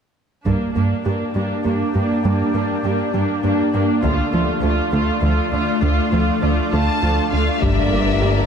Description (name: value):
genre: cinematic, hybrid orchestral and electronic film score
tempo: 67 BPM (dotted quarters)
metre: 6/8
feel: straight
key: unclear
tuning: A4 = 440 Hz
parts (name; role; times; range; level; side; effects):
- clear symphonic viola section; accompaniment; 0.5-8.5 s; G3 to F4; -23 LUFS; right 2 dB; none
- evolving wavetable pad; sustained chords; 1.0-8.5 s; A3 to D5; -23 LUFS; left 2 dB; ensemble chorus, built-in reverb
- analog pluck; arpeggios; 0.5-8.4 s; D3 to G4; -27 LUFS; right 3 dB; chorus, tape echo
- chorused synth bass; riff; 0.5-8.4 s; D2 to G2; -23 LUFS; equal; none
- clear symphonic cello section; bass; 0.5-8.5 s; D2 to G2; -25 LUFS; right 2 dB; none
- taiko ensemble; drums; 0.5-8.5 s; none; -27 LUFS; left 1 dB; none
- rich symphonic violin section; melody; 6.7-8.5 s; E5 to A5; -23 LUFS; left 4 dB; none
- rich studio violin section; second line; 7.6-8.5 s; Bb4 to D5; -26 LUFS; left 4 dB; none
- bright trombone section; sustained chords; 7.6-8.5 s; D3 to G3; -28 LUFS; right 5 dB; none
- dark French horn section; sustained chords; 7.6-8.5 s; Bb3 to D4; -26 LUFS; left 8 dB; none
- rich symphonic double bass section; bass; 7.6-8.5 s; G1; -24 LUFS; right 1 dB; none
- saturated sub bass; bass; 7.6-8.5 s; G1; -24 LUFS; left 2 dB; none
- impact; sound effects; 7.6-8.5 s; none; -29 LUFS; left 2 dB; none
room: moderate scoring stage reverb, RT60 2.1 s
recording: none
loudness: -16 LUFS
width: side -7 dB against mid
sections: 0.5-7.6 A section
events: impact 7.6-8.5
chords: 0.5 Gm; 4.0 Dm; 7.6 Gm